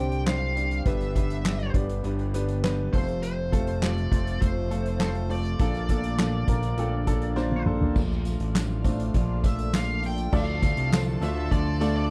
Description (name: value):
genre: piano-driven pop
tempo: 101 BPM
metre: 4/4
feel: straight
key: unclear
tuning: A4 = 440 Hz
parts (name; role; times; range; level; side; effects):
- smooth overdriven lead guitar; melody; 0.0-12.1 s; C5 to G5; -36 LUFS; equal; none
- clear upright piano; accompaniment; 0.0-12.1 s; G2 to C6; -33 LUFS; equal; none
- lush unison pad; sustained chords; 0.0-12.1 s; C3 to F5; -42 LUFS; equal; none
- fat analog bass; bass; 0.0-12.1 s; F1 to D2; -30 LUFS; equal; none
- soft-mallet drum kit; drums; 0.1-11.9 s; crash cymbal, handclaps, hi-hat, kick drum, snare drum, toms; -29 LUFS; equal; none
- picked steel-string acoustic guitar; riff; 8.0-12.1 s; Bb2 to F4; -35 LUFS; equal; none
- tambourine; percussion; 8.0-11.9 s; none; -53 LUFS; equal; none
- clear studio violin section; second line; 10.3-12.1 s; A4 to A5; -42 LUFS; equal; none
room: little or no reverb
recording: none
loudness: -26 LUFS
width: mono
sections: 0.0-8.0 A section; 8.0-10.3 B section; 10.3-12.1 C section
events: upright piano fill 6.2-8.0; drum fill 7.4-8.0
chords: 0.0 Csus2; 0.9 G; 2.9 F; 5.6 Bbmaj7; 10.3 Dm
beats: 0.27 | 0.86 1.45 2.05 2.64 | 3.23 3.82 4.41 5.00 | 5.60 6.19 6.78 7.37 | 7.96 8.55 9.14 9.74 | 10.33 10.92 11.51 12.10